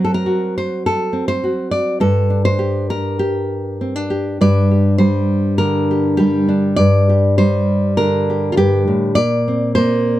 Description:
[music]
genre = folk, solo fingerstyle acoustic guitar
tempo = 101 BPM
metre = 4/4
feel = rubato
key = G minor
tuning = A4 = 442 Hz
[part]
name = nylon-string guitar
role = solo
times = 0.0-10.2 s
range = G2 to D5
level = -14 LUFS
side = equal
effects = none
[sound]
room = moderate studio reverb, RT60 0.7 s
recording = dark, warm production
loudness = -14 LUFS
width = side -14 dB against mid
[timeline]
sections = 0.0-4.4 A section; 4.4-10.2 B section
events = none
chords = 0.0 F#dim; 2.0 Gm; 9.2 Bbadd9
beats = 0.26 0.85 1.43 | 2.01 2.60 3.19 3.80 | 4.41 5.01 5.60 6.20 | 6.79 7.39 7.99 8.58 | 9.17 9.76

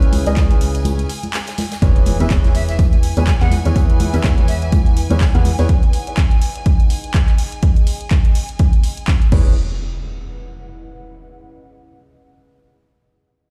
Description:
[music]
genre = piano house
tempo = 124 BPM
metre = 4/4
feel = swing 57% on 16ths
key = E major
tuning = A4 = 436 Hz
[part]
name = bright studio violin section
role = sustained chords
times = 0.0-9.3 s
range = G#5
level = -35 LUFS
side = equal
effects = sidechain pumping
[part]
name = clear upright piano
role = riff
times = 0.0-5.7, 9.3-9.5 s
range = C#3 to F#5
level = -26 LUFS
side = equal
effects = sidechain pumping, digital delay
[part]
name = organ-like FM bass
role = bass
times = 0.0-5.7, 9.3-9.5 s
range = C#2 to E2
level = -20 LUFS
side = equal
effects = sidechain pumping
[part]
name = punchy analog drum machine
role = drums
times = 0.0-9.4 s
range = crash cymbal, handclaps, hi-hat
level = -31 LUFS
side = equal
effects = none
[part]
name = tambourine and congas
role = percussion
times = 0.0-5.7 s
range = none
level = -29 LUFS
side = equal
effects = none
[part]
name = big rock drum kit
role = drums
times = 0.1-5.7 s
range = hi-hat, snare drum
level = -40 LUFS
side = equal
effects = none
[part]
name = electronic kick drum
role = drums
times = 0.4-9.4 s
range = none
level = -16 LUFS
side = equal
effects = none
[part]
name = impact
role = sound effects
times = 1.8-3.8, 9.3-11.3 s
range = none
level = -26 LUFS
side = equal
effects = none
[part]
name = warbly tape-like pad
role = texture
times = 2.7-11.5 s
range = C#4 to G#5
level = -37 LUFS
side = equal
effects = chorus, built-in reverb, sidechain pumping
[part]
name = breathy bright silver concert flute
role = melody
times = 2.5-4.7 s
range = E5 to G#5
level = -33 LUFS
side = equal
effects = digital delay
[sound]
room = little or no reverb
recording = played on a big sound system in a bare room, stone room reverb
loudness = -16 LUFS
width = mono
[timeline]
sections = 0.0-1.8 A section; 1.8-9.6 B section; 9.6-11.5 C section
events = drop 0.0-1.8; break 0.9-1.8; fade-out on ambient pad 1.8-9.6; impact 1.8-3.8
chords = 0.0 C#m7; 1.8 E6; 5.7 G#5/D#; 9.3 E6; 9.6 E5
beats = 0.37 0.85 1.34 | 1.82 2.31 2.79 3.27 | 3.76 4.24 4.72 5.21 | 5.69 6.18 6.66 7.14 | 7.63 8.11 8.60 9.08 | 9.56 10.05 10.53 11.02

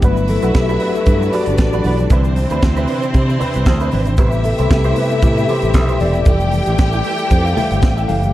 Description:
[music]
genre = disco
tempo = 115 BPM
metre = 4/4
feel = swing 56% on 16ths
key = G major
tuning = A4 = 441 Hz
[part]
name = clear studio string section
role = second line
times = 0.0-8.3 s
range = C4 to G5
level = -22 LUFS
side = equal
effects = none
[part]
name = direct-recorded clean electric guitar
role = accompaniment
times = 0.0-8.3 s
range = A3 to C5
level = -26 LUFS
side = right 4 dB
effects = ensemble chorus
[part]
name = mellow tine electric piano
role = accompaniment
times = 0.0-8.3 s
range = C3 to G5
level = -20 LUFS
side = left 4 dB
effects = medium stereo tremolo
[part]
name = clear symphonic string section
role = sustained chords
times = 0.0-8.3 s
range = C3 to B4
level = -25 LUFS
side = right 1 dB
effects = none
[part]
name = fingered electric bass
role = bass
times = 0.0-8.3 s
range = E1 to C3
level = -18 LUFS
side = equal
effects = none
[part]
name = tight funk drum kit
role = drums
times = 0.0-8.3 s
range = hi-hat, kick drum, snare drum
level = -15 LUFS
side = equal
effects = none
[part]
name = egg shaker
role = percussion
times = 0.0-8.3 s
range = none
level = -46 LUFS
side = right 6 dB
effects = none
[part]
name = congas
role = percussion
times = 0.3-8.3 s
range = none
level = -28 LUFS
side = left 2 dB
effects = none
[sound]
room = light reverb, small room ambience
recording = dark, warm production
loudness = -13 LUFS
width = side -15 dB against mid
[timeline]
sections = 0.0-8.3 A section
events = tine electric piano solo 0.0-8.3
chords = 0.0 Gmaj7; 2.1 Cmaj9; 4.2 Am7; 6.3 Fmaj9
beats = | 0.02 0.54 1.06 1.58 | 2.10 2.62 3.15 3.67 | 4.19 4.71 5.23 5.75 | 6.27 6.79 7.31 7.83

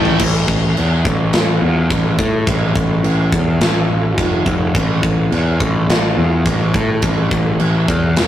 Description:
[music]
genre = heavy metal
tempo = 105 BPM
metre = 4/4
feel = straight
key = unclear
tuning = A4 = 441 Hz
[part]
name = fuzz picked electric bass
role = bass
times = 0.0-8.3 s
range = E1 to A2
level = -15 LUFS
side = equal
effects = overdrive
[part]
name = tight metal drum kit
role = drums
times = 0.1-8.3 s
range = china cymbal, crash cymbal, kick drum, snare drum, toms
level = -18 LUFS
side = equal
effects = none
[sound]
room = light reverb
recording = rough rehearsal-room recording, tube saturation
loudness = -13 LUFS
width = side -11 dB against mid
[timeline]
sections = 0.2-8.3 A section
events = drum fill 0.0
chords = none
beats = | 0.20 0.77 1.34 1.91 | 2.48 3.05 3.62 4.18 | 4.75 5.32 5.89 6.46 | 7.03 7.60 8.17

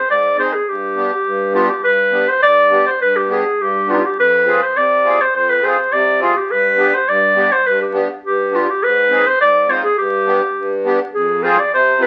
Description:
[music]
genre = klezmer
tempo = 103 BPM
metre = 2/4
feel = straight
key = G phrygian dominant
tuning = A4 = 440 Hz
[part]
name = warm clarinet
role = melody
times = 0.0-12.1 s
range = Eb4 to D5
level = -16 LUFS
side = equal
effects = none
[part]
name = accordion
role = accompaniment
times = 0.1-12.1 s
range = F2 to B4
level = -22 LUFS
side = equal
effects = light tremolo tuning
[sound]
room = moderate studio reverb, RT60 0.5 s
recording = very old 78 rpm record, vinyl crackle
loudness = -15 LUFS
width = mono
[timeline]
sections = 0.0-1.8 A section; 1.8-11.1 A section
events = none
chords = 0.0 Ab; 0.7 G; 4.2 Fm; 6.5 G; 8.8 Ab; 10.0 G; 11.1 Fm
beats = 0.09 | 0.67 1.26 | 1.84 2.42 | 3.01 3.59 | 4.17 4.75 | 5.33 5.92 | 6.50 7.08 | 7.66 8.24 | 8.82 9.40 | 9.98 10.56 | 11.14 11.72

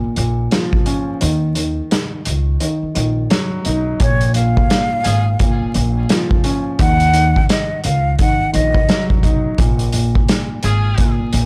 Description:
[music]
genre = hip hop, boom-bap hip-hop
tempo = 86 BPM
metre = 4/4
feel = swing 60% on 16ths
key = Bb minor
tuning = A4 = 440 Hz
[part]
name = dark baby grand piano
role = accompaniment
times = 0.0-11.5 s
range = Bb2 to Eb4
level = -24 LUFS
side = equal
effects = cassette tape
[part]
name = upright bass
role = bass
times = 0.0-11.5 s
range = Ab1 to Eb2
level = -20 LUFS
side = equal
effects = tube saturation
[part]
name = vintage drum kit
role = drums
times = 0.2-11.5 s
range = hi-hat, kick drum, snare drum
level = -19 LUFS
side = equal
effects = none
[part]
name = breathy concert flute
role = melody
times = 4.0-9.1 s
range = Db5 to Gb5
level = -22 LUFS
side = equal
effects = none
[part]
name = edgy saxophone section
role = stabs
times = 5.0-5.3, 10.6-11.1 s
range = Db4 to Ab4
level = -29 LUFS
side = equal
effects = tape echo
[sound]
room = small room ambience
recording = transformer saturation, vinyl crackle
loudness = -16 LUFS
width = mono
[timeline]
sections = 0.0-4.0 A section; 4.0-11.5 B section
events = kick muted 1.2-4.0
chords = 0.0 Bbm; 1.2 Ebm; 4.0 Bbm7; 6.8 Ebm; 9.6 Bbm7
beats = 0.52 | 1.22 1.91 2.61 3.31 | 4.00 4.70 5.40 6.10 | 6.80 7.49 8.19 8.89 | 9.59 10.28 10.98

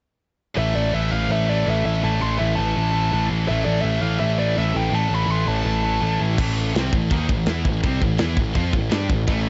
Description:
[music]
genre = heavy metal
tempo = 165 BPM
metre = 4/4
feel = straight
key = A minor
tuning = A4 = 440 Hz
[part]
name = heavy high-gain guitar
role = riff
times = 0.5-9.5 s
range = A2 to G4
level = -31 LUFS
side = equal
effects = distortion
[part]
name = high-gain lead guitar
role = melody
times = 0.6-6.2 s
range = D5 to C6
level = -28 LUFS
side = equal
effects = distortion, tape echo
[part]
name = tight distorted guitar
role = riff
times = 0.6-9.5 s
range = A2 to G4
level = -31 LUFS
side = equal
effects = distortion
[part]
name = fuzz picked electric bass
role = bass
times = 0.6-9.5 s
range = A1 to G2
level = -24 LUFS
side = equal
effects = overdrive
[part]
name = tight metal drum kit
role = drums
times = 6.4-9.4 s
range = crash cymbal, kick drum, snare drum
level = -25 LUFS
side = equal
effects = none
[sound]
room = light reverb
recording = dark, warm production, nothing above 7.8 kHz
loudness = -21 LUFS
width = mono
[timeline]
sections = 0.6-6.4 A section; 6.4-9.5 B section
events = none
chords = 0.6 A5; 6.4 Am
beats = | 0.57 0.93 1.29 1.66 | 2.02 2.38 2.75 3.11 | 3.48 3.84 4.20 4.57 | 4.93 5.29 5.66 6.02 | 6.38 6.74 7.11 7.47 | 7.83 8.19 8.56 8.92 | 9.28

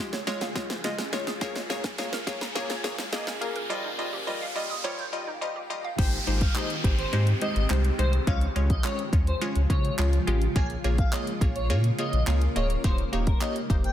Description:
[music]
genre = dance-pop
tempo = 105 BPM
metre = 4/4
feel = straight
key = Ab major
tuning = A4 = 439 Hz
[part]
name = wavetable chord stab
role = accompaniment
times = 0.0-13.9 s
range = G3 to Eb5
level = -32 LUFS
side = equal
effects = sidechain pumping
[part]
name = granular cloud pad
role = sustained chords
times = 0.2-13.9 s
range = Db3 to Ab4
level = -36 LUFS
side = left 1 dB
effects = built-in reverb, sidechain pumping
[part]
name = riser and downlifter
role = sound effects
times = 0.1-10.6 s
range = none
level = -36 LUFS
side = equal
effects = none
[part]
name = hollow square pluck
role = arpeggios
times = 0.1-5.9 s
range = Bb2 to Ab6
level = -39 LUFS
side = right 5 dB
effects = chorus, sidechain pumping, digital delay
[part]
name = pop drum kit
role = drums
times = 0.1-13.9 s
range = crash cymbal, handclaps, hi-hat, kick drum, snare drum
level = -28 LUFS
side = equal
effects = none
[part]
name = airy dreamy lead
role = melody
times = 6.0-13.9 s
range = Bb4 to Ab5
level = -34 LUFS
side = equal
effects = chorus, sidechain pumping, digital delay
[part]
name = warm sub bass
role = bass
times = 6.0-13.9 s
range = D1 to Db3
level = -25 LUFS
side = equal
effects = sidechain pumping
[sound]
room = light reverb, digital ambience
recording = dense, heavily limited modern master, high-pass filter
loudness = -24 LUFS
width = side -11 dB against mid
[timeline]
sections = 0.0-6.0 A section; 6.0-13.9 B section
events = build-up 0.0-6.0; drum fill 0.0-3.7; riser 0.1-6.0; drop 6.0-13.9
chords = 0.0 Db; 1.4 Bbm7; 3.7 Ebadd9; 6.0 Abmaj7; 8.3 Db; 10.6 Bbm7; 12.8 Eb7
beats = 0.27 0.84 | 1.42 1.99 2.56 3.13 | 3.70 4.27 4.84 5.42 | 5.99 6.56 7.13 7.70 | 8.27 8.84 9.41 9.99 | 10.56 11.13 11.70 12.27 | 12.84 13.41

